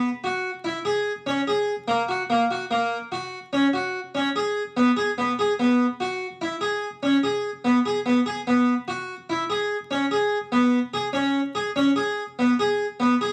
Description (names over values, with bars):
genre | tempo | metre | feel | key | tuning
contemporary instrumental, contemporary | 146 BPM | 7/4 | straight | C# dorian | A4 = 440 Hz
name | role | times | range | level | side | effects
harpsichord | solo | 0.0-13.3 s | A#3 to G#4 | -24 LUFS | equal | none
room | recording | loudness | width
wet studio reverb, RT60 0.5 s | vinyl crackle | -24 LUFS | mono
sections
0.0-10.5 A section; 10.5-13.3 B section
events
none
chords
none